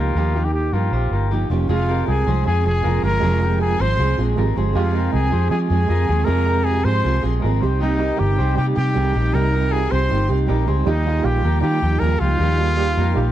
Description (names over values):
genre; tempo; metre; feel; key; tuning
indie pop; 157 BPM; 4/4; straight; F minor; A4 = 441 Hz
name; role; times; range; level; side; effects
breathy trumpet; melody; 0.0-13.3 s; Eb4 to C5; -24 LUFS; left 1 dB; slapback echo
fingerpicked steel-string acoustic guitar; accompaniment; 0.0-13.3 s; F2 to Ab4; -26 LUFS; right 6 dB; none
electric guitar through a small old amp; arpeggios; 0.0-13.3 s; Db4 to C5; -27 LUFS; left 4 dB; none
vintage muted fingered electric bass; bass; 0.0-13.3 s; F1 to F3; -19 LUFS; equal; none
warm studio violin section; second line; 1.7-13.3 s; Eb5 to C6; -34 LUFS; left 1 dB; slapback echo
reed electric piano; accompaniment; 1.7-13.3 s; G3 to Bb4; -26 LUFS; right 9 dB; fast tremolo
room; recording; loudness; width
light reverb; dry, close 1970s-style studio recording; -16 LUFS; side -12 dB against mid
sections
0.0-1.7 A section; 1.7-13.3 B section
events
none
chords
0.0 Ebadd9; 1.7 Fm; 7.6 Ebadd9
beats
| 0.16 0.54 0.93 1.31 | 1.69 2.07 2.46 2.84 | 3.22 3.60 3.99 4.37 | 4.75 5.13 5.51 5.90 | 6.28 6.66 7.04 7.43 | 7.81 8.19 8.57 8.96 | 9.34 9.72 10.10 10.48 | 10.87 11.25 11.63 12.02 | 12.40 12.78 13.16